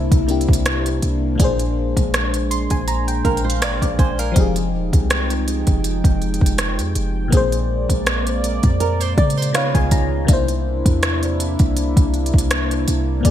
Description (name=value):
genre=contemporary R&B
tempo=81 BPM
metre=4/4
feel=swing 54% on 16ths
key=unclear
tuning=A4 = 440 Hz
part: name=FM electric piano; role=accompaniment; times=0.0-13.3 s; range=Bb2 to C6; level=-24 LUFS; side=left 4 dB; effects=chorus, phaser
part: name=warm analog pad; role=sustained chords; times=0.0-13.3 s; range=C3 to G5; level=-26 LUFS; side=right 1 dB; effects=lush chorus
part: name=clean 808-style bass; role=bass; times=0.0-13.3 s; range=Eb1 to Db3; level=-22 LUFS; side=equal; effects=none
part: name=smooth R&B drum kit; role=drums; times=0.1-13.3 s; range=hi-hat, kick drum, rim click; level=-18 LUFS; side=equal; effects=gated reverb
part: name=flamenco guitar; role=arpeggios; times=3.2-10.3 s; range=Ab4 to D5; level=-26 LUFS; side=right 7 dB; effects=ping-pong delay
room=light reverb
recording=bright 1980s-style digital production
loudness=-16 LUFS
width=side -11 dB against mid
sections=0.0-13.3 A section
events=FM electric piano fill 2.1-4.4, 8.8-10.3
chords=0.0 C9; 1.4 Bb9; 4.4 Fm9; 7.3 Bb9; 9.5 Db9; 10.3 C9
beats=0.66 | 1.40 2.14 2.88 3.62 | 4.36 5.10 5.84 6.58 | 7.32 8.06 8.80 9.55 | 10.29 11.03 11.77 12.51 | 13.25